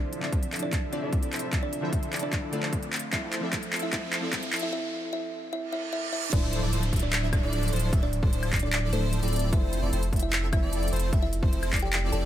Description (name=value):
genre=future bass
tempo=150 BPM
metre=4/4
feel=half-time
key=D minor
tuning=A4 = 439 Hz
part: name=kalimba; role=melody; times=0.0-12.3 s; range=A3 to A5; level=-34 LUFS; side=right 1 dB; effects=sidechain pumping, dub echo
part: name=glassy digital keys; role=accompaniment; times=0.0-6.4 s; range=D3 to E5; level=-38 LUFS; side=left 2 dB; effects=chorus, sidechain pumping
part: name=clear studio string section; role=sustained chords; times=0.0-4.7 s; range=C3 to E5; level=-44 LUFS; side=left 2 dB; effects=none
part: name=supersaw chords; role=riff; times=0.0-12.3 s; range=F3 to E5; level=-35 LUFS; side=equal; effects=sidechain pumping, low-pass filter
part: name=saturated sub bass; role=bass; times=0.0-12.3 s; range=D1 to F1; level=-30 LUFS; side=equal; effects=sidechain pumping, high-pass filter
part: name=riser, reverse cymbal and downlifter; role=sound effects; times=1.7-9.5 s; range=none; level=-38 LUFS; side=right 3 dB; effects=none
part: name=trap drum kit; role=drums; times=0.1-12.2 s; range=crash cymbal, handclaps, hi-hat, woodblock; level=-32 LUFS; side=equal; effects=studio reverb
part: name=electronic kick drum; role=drums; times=0.3-11.8 s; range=none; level=-26 LUFS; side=equal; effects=studio reverb
part: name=airy dreamy lead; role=arpeggios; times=6.3-12.3 s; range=C5 to E5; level=-37 LUFS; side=left 2 dB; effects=chorus, sidechain pumping
room=digital ambience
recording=high-pass filter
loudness=-25 LUFS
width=side -12 dB against mid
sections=0.0-6.3 A section; 6.3-12.3 B section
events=build-up 0.0-6.3; drum fill 0.0-4.7; filter sweep on supersaw synth 0.0-6.3; filter sweep 0.0-6.3; riser 1.7-4.7; break 4.7-6.3; reverse cymbal 5.7-6.3; drop 6.3-12.3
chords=0.0 Dm9; 2.9 Fmaj7; 6.3 Dm9